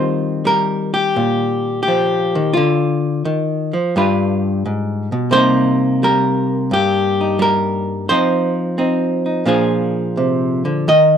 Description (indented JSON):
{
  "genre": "solo jazz",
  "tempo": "86 BPM",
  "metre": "4/4",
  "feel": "swing 69% on 8ths, rubato",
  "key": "Eb major",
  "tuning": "A4 = 440 Hz",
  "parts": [
    { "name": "archtop guitar, miked and amplified", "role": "solo", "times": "0.0-11.2 s", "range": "G2 to Eb5", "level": "-14 LUFS", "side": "equal", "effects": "none" }
  ],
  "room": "little or no reverb",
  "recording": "close, detailed microphones",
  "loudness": "-15 LUFS",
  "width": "side -8 dB against mid",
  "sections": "0.0-11.2 A section",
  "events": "none",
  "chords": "0.0 Eb69; 2.6 Dm; 3.9 G7; 5.3 Cm7; 8.1 F5; 9.5 Bb7",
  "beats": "0.45 1.16 1.86 | 2.55 3.25 3.94 4.64 | 5.33 6.01 6.71 7.39 | 8.08 8.77 9.47 10.18 | 10.89"
}